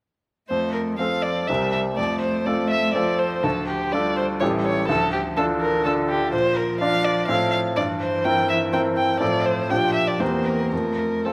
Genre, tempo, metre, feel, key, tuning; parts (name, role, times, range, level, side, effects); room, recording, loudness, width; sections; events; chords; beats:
quick classical-period movement for piano quartet; 124 BPM; 3/4; rubato; F major; A4 = 440 Hz
rich violin; melody; 0.5-11.3 s; G4 to G5; -26 LUFS; equal
rich cello; second line; 0.5-11.3 s; D3 to Bb3; -32 LUFS; equal
bright grand piano; accompaniment; 0.5-11.3 s; A1 to D5; -25 LUFS; equal
wet recital hall reverb, RT60 1.6 s; -22 LUFS; mono
0.5-11.3 A section
0.5 F; 1.5 C7; 2.0 F; 3.4 Dm; 4.4 A7; 4.9 Dm; 6.3 Bb; 7.3 F/A; 7.8 C7/G; 9.2 F/A; 9.7 Gm7/Bb; 10.2 C7/E; 10.7 F
| 0.50 0.99 1.49 | 1.98 2.46 2.95 | 3.44 3.93 4.41 | 4.89 5.38 5.85 | 6.33 6.81 7.29 | 7.77 8.25 8.73 | 9.21 9.70 10.21 | 10.72 11.25